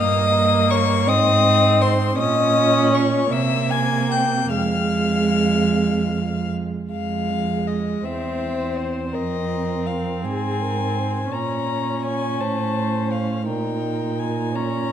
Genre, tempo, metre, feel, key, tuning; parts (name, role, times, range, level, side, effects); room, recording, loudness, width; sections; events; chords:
classical, slow romantic movement for string quartet; 49-56 BPM (dotted quarters); 6/8; rubato; F minor; A4 = 440 Hz
warm violin; melody; 0.0-14.9 s; C5 to Ab6; -25 LUFS; left 7 dB
dark violin; second line; 0.0-14.9 s; Ab4 to Ab5; -24 LUFS; left 2 dB
warm viola; accompaniment; 0.0-14.9 s; Ab3 to Eb4; -24 LUFS; right 3 dB
dark cello; bass; 0.0-14.9 s; E2 to C3; -24 LUFS; right 3 dB
wet recital hall reverb, RT60 1.7 s; dark, warm production; -18 LUFS; side -9 dB against mid
0.0-6.9 A section; 6.9-14.9 B section
0.0 Eb/G; 1.1 Ab; 2.2 Bbmadd11; 3.3 C7b13; 4.5 Fm; 8.0 C/E; 9.1 Fm; 11.3 Bbm; 12.4 Dbmaj7#5/A; 13.5 Bbm